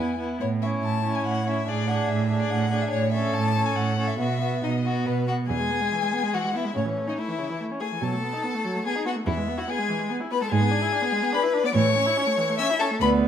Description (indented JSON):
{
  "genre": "quick classical-period movement for string quartet",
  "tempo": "144 BPM",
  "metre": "3/4",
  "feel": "straight",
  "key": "E major",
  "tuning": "A4 = 440 Hz",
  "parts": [
    { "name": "rich violin", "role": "melody", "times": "0.0-13.1 s", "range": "C#5 to E6", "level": "-29 LUFS", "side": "left 6 dB", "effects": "none" },
    { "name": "clear violin", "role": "second line", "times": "0.0-13.1 s", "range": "C#4 to E5", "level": "-28 LUFS", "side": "left 4 dB", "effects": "none" },
    { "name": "clear viola", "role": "accompaniment", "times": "0.0-13.3 s", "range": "C#3 to E4", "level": "-29 LUFS", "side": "right 2 dB", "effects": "none" },
    { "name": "clear cello", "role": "bass", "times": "0.0-13.3 s", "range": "D2 to B2", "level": "-25 LUFS", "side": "right 4 dB", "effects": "none" }
  ],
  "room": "wet stone room reverb, RT60 1.0 s",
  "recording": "none",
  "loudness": "-22 LUFS",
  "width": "side -9 dB against mid",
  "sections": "0.0-5.5 A section; 5.5-13.3 B section",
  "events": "none",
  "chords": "0.4 A; 1.7 E9; 2.9 A; 4.2 B; 5.5 E; 6.8 A; 8.0 B7; 9.3 E; 10.5 E7/G#; 11.8 A",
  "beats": "| 0.41 0.83 1.26 | 1.68 2.10 2.52 | 2.93 3.35 3.77 | 4.20 4.64 5.07 | 5.50 5.92 6.35 | 6.77 7.19 7.61 | 8.02 8.44 8.86 | 9.27 9.69 10.10 | 10.52 10.93 11.34 | 11.76 12.18 12.59 | 13.01"
}